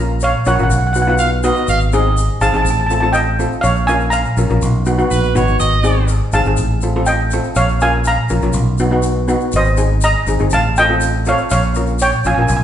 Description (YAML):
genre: calypso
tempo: 122 BPM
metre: 4/4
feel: straight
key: unclear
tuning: A4 = 440 Hz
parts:
  - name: steel pan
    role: melody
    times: 0.0-12.6 s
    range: C5 to Bb5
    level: -16 LUFS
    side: right 1 dB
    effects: none
  - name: steel pan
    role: accompaniment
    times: 0.0-12.5 s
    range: B3 to Db5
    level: -20 LUFS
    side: left 1 dB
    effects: none
  - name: fingered electric bass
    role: bass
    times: 0.0-12.6 s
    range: G1 to B1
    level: -16 LUFS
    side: equal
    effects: none
  - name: egg shaker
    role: percussion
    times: 0.2-12.6 s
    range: none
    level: -30 LUFS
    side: left 5 dB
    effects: none
  - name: bright trumpet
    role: second line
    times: 1.2-6.2 s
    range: B4 to F5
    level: -19 LUFS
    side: right 3 dB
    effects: none
room: wet large studio reverb, RT60 1.3 s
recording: band playing live in one room, nothing above 10.4 kHz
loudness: -13 LUFS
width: side -10 dB against mid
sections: 0.0-12.6 A section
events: none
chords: 0.0 Bbm; 0.7 B; 1.7 Ab; 2.7 F7/A; 3.6 Bbm; 4.6 B6; 5.6 Ab; 6.6 F7/A; 7.6 Bbm; 8.6 B; 9.5 Abadd9; 10.5 F7/A; 11.5 Bbm